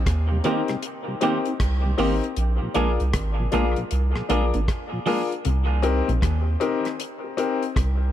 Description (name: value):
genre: dub reggae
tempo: 78 BPM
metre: 4/4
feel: swing 64% on 16ths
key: C minor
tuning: A4 = 443 Hz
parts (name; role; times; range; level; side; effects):
- soft dub sub bass; bass; 0.0-8.1 s; Ab1 to Eb2; -22 LUFS; equal; none
- deep reggae drum kit; drums; 0.1-8.0 s; hi-hat, kick drum, rim click; -28 LUFS; equal; none
- mellow tonewheel organ; accompaniment; 0.3-5.2 s; Bb2 to Eb4; -31 LUFS; right 1 dB; chorus vibrato, slow rotary speaker
- clean electric guitar; accompaniment; 0.4-5.2 s; Eb3 to Ab4; -30 LUFS; right 5 dB; dub echo
- warm grand piano; stabs; 0.4-7.6 s; C4 to Bb4; -26 LUFS; left 5 dB; dub echo
- semi-hollow electric guitar; riff; 5.5-8.0 s; Bb2 to Eb3; -33 LUFS; left 5 dB; spring reverb, dub echo
room: light reverb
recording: echo-heavy mix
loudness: -21 LUFS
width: side -11 dB against mid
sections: 0.0-8.1 A section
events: break 0.0-5.4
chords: 0.0 Cm7; 2.4 Bb7; 5.4 Cm7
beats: 0.07 0.83 1.60 | 2.37 3.14 3.91 4.68 | 5.45 6.22 6.99 7.76